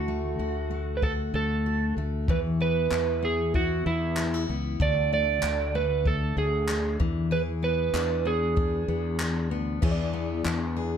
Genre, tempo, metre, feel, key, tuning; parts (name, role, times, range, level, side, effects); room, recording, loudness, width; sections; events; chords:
acoustic pop; 95 BPM; 4/4; straight; A4 = 440 Hz
electric slide guitar; melody; 0.0-9.5 s; E4 to D5; -28 LUFS; right 5 dB; slapback echo
picked steel-string acoustic guitar; accompaniment; 0.0-11.0 s; D3 to A4; -31 LUFS; left 4 dB
fretless electric bass; bass; 0.0-11.0 s; C#2 to E2; -30 LUFS; left 1 dB
compact cocktail drum kit; drums; 1.0-10.6 s; crash cymbal, handclaps, kick drum; -29 LUFS; left 1 dB
reed electric piano; accompaniment; 9.8-11.0 s; B3 to D5; -35 LUFS; left 5 dB; fast tremolo
little or no reverb; close, detailed microphones; -24 LUFS; side -8 dB against mid
0.0-9.8 A section; 9.8-11.0 B section
0.0 D; 2.3 Esus2; 4.8 D; 7.0 E7